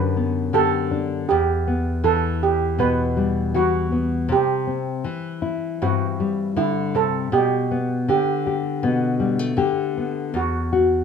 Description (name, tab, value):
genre	acoustic folk duo or small band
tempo	80 BPM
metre	4/4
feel	straight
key	E minor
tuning	A4 = 441 Hz
part	steel pan	second line	0.0-11.0 s	E4 to B4	-22 LUFS	right 8 dB	none
part	nylon-string guitar	accompaniment	0.0-11.0 s	E2 to G4	-21 LUFS	left 4 dB	none
room	moderate large studio reverb, RT60 1.0 s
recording	minimal, uncompressed stereo recording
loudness	-19 LUFS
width	side -6 dB against mid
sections	0.0-11.0 A section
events	none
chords	0.0 Bm; 1.3 Emadd9; 4.3 C; 7.3 Gadd9/B; 10.3 Esus2